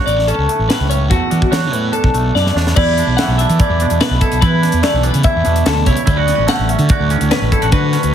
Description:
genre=math rock and midwest emo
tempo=145 BPM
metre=4/4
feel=straight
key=unclear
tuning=A4 = 441 Hz
part: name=twangy electric guitar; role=accompaniment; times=0.0-8.1 s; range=D2 to F#4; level=-19 LUFS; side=right 6 dB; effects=spring reverb
part: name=twelve-string electric guitar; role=arpeggios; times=0.0-8.1 s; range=F#4 to F#5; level=-19 LUFS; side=left 4 dB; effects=none
part: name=fuzz fingered electric bass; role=bass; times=0.1-8.1 s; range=A1 to E3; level=-16 LUFS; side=equal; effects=overdrive
part: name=crisp fusion drum kit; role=drums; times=0.1-8.1 s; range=crash cymbal, hi-hat, kick drum, snare drum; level=-17 LUFS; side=equal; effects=none
room=light reverb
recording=heavily compressed radio sound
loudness=-12 LUFS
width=side -9 dB against mid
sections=0.0-2.8 A section; 2.8-8.1 B section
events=drum fill 2.4-2.8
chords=0.0 Dmaj7; 1.1 E9sus4; 6.1 Dmaj7

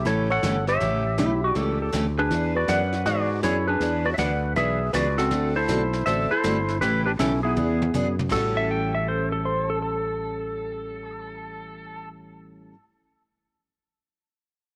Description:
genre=country, western swing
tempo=160 BPM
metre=4/4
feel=swing 65% on 8ths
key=A mixolydian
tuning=A4 = 440 Hz
part: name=clean lap steel guitar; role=melody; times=0.0-12.1 s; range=B3 to F#5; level=-28 LUFS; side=equal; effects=tape echo
part: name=hollow-body jazz guitar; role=second line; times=0.0-12.7 s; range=E4 to D5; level=-33 LUFS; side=equal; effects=none
part: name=picked steel-string acoustic guitar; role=accompaniment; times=0.0-12.8 s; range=A2 to A4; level=-33 LUFS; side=equal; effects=none
part: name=sustaining fretless electric bass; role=bass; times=0.0-12.7 s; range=G1 to G#2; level=-30 LUFS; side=equal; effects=none
part: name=vintage brush drum kit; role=drums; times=0.1-8.4 s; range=brushed snare drum, crash cymbal, hi-hat, kick drum, snare drum, toms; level=-37 LUFS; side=equal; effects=none
part: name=clean lap steel guitar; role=second line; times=1.2-2.1, 8.6-12.1 s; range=E4 to G5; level=-30 LUFS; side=equal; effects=none
room=light reverb, studio ambience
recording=none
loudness=-24 LUFS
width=mono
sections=0.0-8.3 A section; 8.3-11.3 B section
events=drum fill 7.6-8.3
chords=0.0 A9; 2.3 E9; 5.3 D9; 6.8 A9; 7.6 E9; 8.3 A6

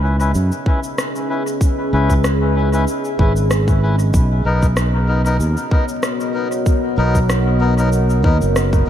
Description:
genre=ambient dub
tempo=95 BPM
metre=4/4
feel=swing 54% on 16ths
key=C# dorian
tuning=A4 = 439 Hz
part: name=deep dark ambient pad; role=sustained chords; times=0.0-8.9 s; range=B3 to E5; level=-22 LUFS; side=left 1 dB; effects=chorus, built-in reverb
part: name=melodica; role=stabs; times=0.0-8.9 s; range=B3 to B4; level=-23 LUFS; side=left 2 dB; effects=low-pass filter, dub echo
part: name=modern bright fingered electric bass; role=bass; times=0.0-8.8 s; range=F#1 to F#2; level=-16 LUFS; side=equal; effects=none
part: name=electronic cabasa and rim click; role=drums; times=0.2-8.8 s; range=none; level=-26 LUFS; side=equal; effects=dub echo
part: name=electronic kick drum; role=drums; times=0.7-8.8 s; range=none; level=-15 LUFS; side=equal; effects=none
room=light reverb, digital ambience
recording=vinyl crackle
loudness=-14 LUFS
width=side -10 dB against mid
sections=0.0-8.9 A section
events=filter sweep on melodica 0.0-8.9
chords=0.0 C#m7; 4.1 Bmaj7

